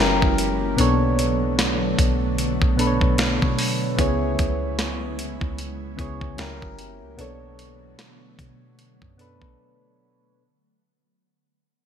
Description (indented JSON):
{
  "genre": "contemporary R&B",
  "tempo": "75 BPM",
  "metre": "4/4",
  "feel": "swing 58% on 16ths",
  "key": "B dorian",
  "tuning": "A4 = 440 Hz",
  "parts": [
    { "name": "soft electric-piano-like synth keys", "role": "accompaniment", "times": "0.0-10.4 s", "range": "B2 to C#5", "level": "-24 LUFS", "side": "left 1 dB", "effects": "chorus, phaser" },
    { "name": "ethereal airy pad", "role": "sustained chords", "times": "0.0-10.4 s", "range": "C#3 to E4", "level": "-29 LUFS", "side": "right 1 dB", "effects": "ensemble chorus, built-in reverb" },
    { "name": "soft 808-style bass", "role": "bass", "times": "0.0-9.6 s", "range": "F#1 to B2", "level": "-27 LUFS", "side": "equal", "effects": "none" },
    { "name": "dusty soul sampler-style drum kit", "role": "drums", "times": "0.2-9.6 s", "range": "hi-hat, kick drum, snare drum", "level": "-24 LUFS", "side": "equal", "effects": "gated reverb" }
  ],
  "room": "moderate plate reverb, RT60 2.7 s",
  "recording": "bright 1980s-style digital production",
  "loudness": "-19 LUFS",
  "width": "side -8 dB against mid",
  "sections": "0.0-10.4 A section",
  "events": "fade-out 0.0-10.4; break 9.6-10.4",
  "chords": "0.0 F#7b9; 0.8 Bm7; 4.0 C#m7; 6.4 F#7b9; 7.2 Bm7"
}